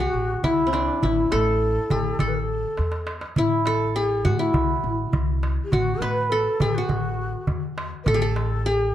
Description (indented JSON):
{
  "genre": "Arabic maqam ensemble",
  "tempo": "102 BPM",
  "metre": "4/4",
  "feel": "straight",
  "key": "A maqam rast",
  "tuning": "A4 = 439 Hz",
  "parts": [
    { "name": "qanun", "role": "melody", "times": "0.0-8.9 s", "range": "C4+50c to B4", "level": "-24 LUFS", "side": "equal", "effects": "plate reverb" },
    { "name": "breathy mellow ney", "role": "second line", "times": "0.0-8.9 s", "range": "D4 to B4", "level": "-28 LUFS", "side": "left 1 dB", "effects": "none" },
    { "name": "upright bass", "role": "bass", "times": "0.0-8.9 s", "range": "A1 to A2", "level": "-26 LUFS", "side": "equal", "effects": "none" },
    { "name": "darbuka", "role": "percussion", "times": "0.0-8.7 s", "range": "none", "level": "-27 LUFS", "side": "left 1 dB", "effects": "none" }
  ],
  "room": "light reverb",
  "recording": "dark, warm production",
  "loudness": "-20 LUFS",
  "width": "side -12 dB against mid",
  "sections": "0.0-8.9 A section",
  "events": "drum fill 2.8-3.4",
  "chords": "none"
}